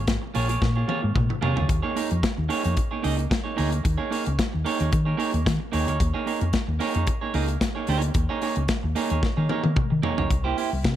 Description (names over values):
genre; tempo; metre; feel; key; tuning
disco; 112 BPM; 4/4; straight; unclear; A4 = 439 Hz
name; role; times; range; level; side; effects
hollow-body short-scale fingered electric bass; bass; 0.0-11.0 s; Ab1 to Eb3; -24 LUFS; left 1 dB; none
clean electric guitar; accompaniment; 0.1-10.9 s; Bb3 to Eb5; -27 LUFS; right 5 dB; spring reverb
modern studio drum kit; drums; 0.1-11.0 s; hi-hat, kick drum, snare drum, toms; -26 LUFS; left 1 dB; none
room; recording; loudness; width
small room ambience; none; -22 LUFS; side -12 dB against mid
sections
0.0-10.3 A section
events
drum fill 0.6-1.7, 9.2-10.3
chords
0.0 Bbm7; 1.7 Eb7sus4; 10.3 C7